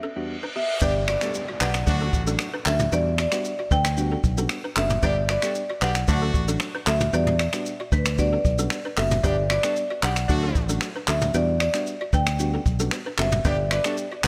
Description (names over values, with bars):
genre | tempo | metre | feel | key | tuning
afrobeats | 114 BPM | 4/4 | straight | E dorian | A4 = 441 Hz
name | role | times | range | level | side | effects
marimba with medium hard mallets | melody | 0.0-14.3 s | B4 to G5 | -29 LUFS | equal | none
balafon | riff | 0.0-14.3 s | B3 to D5 | -36 LUFS | equal | none
reverse cymbal and downlifter | sound effects | 0.1-5.0 s | none | -38 LUFS | equal | none
soft electric-piano-like synth keys | accompaniment | 0.2-14.0 s | E2 to G4 | -33 LUFS | equal | chorus
warm horn section | second line | 0.8-14.3 s | A3 to B4 | -35 LUFS | equal | digital delay
fingered electric bass | bass | 0.8-14.3 s | F#1 to E2 | -28 LUFS | equal | none
jazz brush drum kit | drums | 0.8-14.3 s | finger snaps, handclaps, hi-hat, kick drum, rim click, shaker, toms | -28 LUFS | equal | none
room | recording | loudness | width
light reverb, small room ambience | bright 1980s-style digital production | -24 LUFS | mono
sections
0.8-14.3 A section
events
break 0.0-0.8; reverse cymbal 0.1-0.8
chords
0.0 Em7; 0.8 G; 1.9 D; 2.9 Em7; 5.0 G; 6.1 D; 7.1 Em7; 9.2 G; 10.3 D; 11.3 Em7; 13.4 G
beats
0.29 | 0.82 1.34 1.87 2.40 | 2.92 3.45 3.98 4.50 | 5.03 5.55 6.08 6.61 | 7.13 7.66 8.19 8.71 | 9.24 9.77 10.29 10.82 | 11.34 11.87 12.40 12.92 | 13.45 13.97